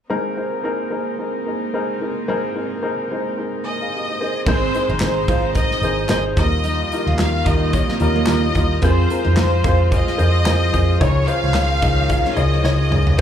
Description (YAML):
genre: piano-driven pop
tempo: 110 BPM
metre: 4/4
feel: swing 56% on 16ths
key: Ab major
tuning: A4 = 439 Hz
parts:
  - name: warm upright piano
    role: accompaniment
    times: 0.1-13.2 s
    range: Ab1 to Ab5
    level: -22 LUFS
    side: left 1 dB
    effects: plate reverb, slapback echo
  - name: warm chamber string section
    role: sustained chords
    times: 0.1-13.2 s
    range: Eb3 to Bb4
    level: -28 LUFS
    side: left 1 dB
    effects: plate reverb
  - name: bright symphonic violin section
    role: melody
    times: 3.7-13.2 s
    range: C5 to F5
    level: -23 LUFS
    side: left 1 dB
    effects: plate reverb, slapback echo
  - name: picked steel-string acoustic guitar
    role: riff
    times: 4.5-13.2 s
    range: Bb3 to F4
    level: -27 LUFS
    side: right 10 dB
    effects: slapback echo
  - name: vintage muted picked electric bass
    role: bass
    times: 4.5-13.2 s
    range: Ab1 to F2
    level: -18 LUFS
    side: equal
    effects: none
  - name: modern studio drum kit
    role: drums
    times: 4.5-13.2 s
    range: crash cymbal, handclaps, hi-hat, kick drum, snare drum, toms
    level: -22 LUFS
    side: equal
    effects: none
room: light reverb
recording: live gig heard through the venue's PA, club reverb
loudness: -16 LUFS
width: side -9 dB against mid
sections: 0.1-4.5 A section; 4.5-13.2 B section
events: drum fill 12.6-13.2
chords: 0.1 Abadd9; 4.2 Ab; 6.4 Ebadd9; 8.8 Fm; 11.0 Dbadd9